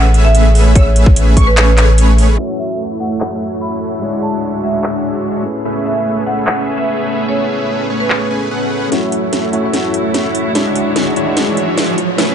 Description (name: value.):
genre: future bass.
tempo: 147 BPM.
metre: 4/4.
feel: half-time.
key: A major.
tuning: A4 = 441 Hz.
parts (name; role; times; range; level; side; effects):
marimba with hard mallets; melody; 0.0-8.3 s; B4 to B5; -22 LUFS; right 1 dB; sidechain pumping, dub echo.
dark chamber string section; sustained chords; 0.0-12.3 s; D2 to C#5; -27 LUFS; right 1 dB; sidechain pumping, low-pass filter.
wide unison pluck; arpeggios; 0.0-2.4 s; C#6 to E6; -27 LUFS; equal; none.
dense compressed supersaw; riff; 0.0-12.3 s; G#3 to G#5; -17 LUFS; right 1 dB; sidechain pumping, low-pass filter.
saturated sub bass; bass; 0.0-2.4 s; A1; -10 LUFS; equal; sidechain pumping.
trap drum kit; drums; 0.1-12.3 s; crash cymbal, handclaps, hi-hat, snare drum; -19 LUFS; equal; overdrive, high-pass filter on hats, low-pass filter on hats, high-pass filter on snare, low-pass filter on snare, high-pass filter on cymbals, low-pass filter on cymbals, high-pass filter on room, low-pass filter on room.
electronic kick drum; drums; 0.8-1.5 s; none; -9 LUFS; equal; overdrive.
tine electric piano; accompaniment; 2.4-12.3 s; G#3 to E5; -22 LUFS; left 3 dB; overdrive, medium stereo tremolo, sidechain pumping, dub echo.
riser; sound effects; 10.3-12.3 s; none; -23 LUFS; right 2 dB; none.
room: light reverb, digital ambience.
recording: high-pass filter, low-pass filter, nothing above 10.6 kHz.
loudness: -12 LUFS.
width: side -9 dB against mid.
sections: 0.0-2.4 A section; 2.4-8.9 B section; 8.9-12.3 C section.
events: drop 0.0-2.4; kick drops out 1.6-2.4; filter sweep on supersaw synth 2.4-8.9, 8.9-12.3; filter sweep on string section 2.4-8.9; filter sweep 2.4-8.9; build-up 8.9-12.3; drum fill 8.9-12.3; riser 10.3-12.3.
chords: 0.0 Amaj9; 2.4 F#m7; 4.0 Dmaj9#11; 5.4 Amaj9; 8.9 F#m7; 10.6 Dmaj9#11.